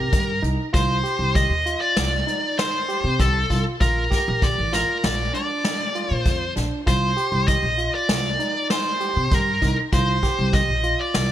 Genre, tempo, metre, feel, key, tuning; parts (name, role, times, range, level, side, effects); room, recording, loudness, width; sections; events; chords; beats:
progressive instrumental, band music in an uneven meter; 98 BPM; 5/4; straight; C dorian; A4 = 439 Hz
high-gain lead guitar; melody; 0.0-11.3 s; A4 to Eb5; -23 LUFS; equal; distortion, digital delay
overdriven tine electric piano; arpeggios; 0.0-11.3 s; D4 to G4; -30 LUFS; right 3 dB
upright bass; bass; 0.0-11.3 s; A1 to C3; -24 LUFS; equal
vintage brush drum kit; drums; 0.1-11.3 s; hi-hat, kick drum, snare drum; -24 LUFS; equal; gated reverb
light reverb, studio ambience; bright 1980s-style digital production; -19 LUFS; side -11 dB against mid
0.0-11.3 A section
0.0 Cm7; 0.7 F5/C; 3.8 Bb; 6.9 Cm
0.13 | 0.74 1.35 1.97 2.58 3.19 | 3.81 4.42 5.03 5.64 6.25 | 6.87 7.48 8.09 8.70 9.31 | 9.92 10.53 11.14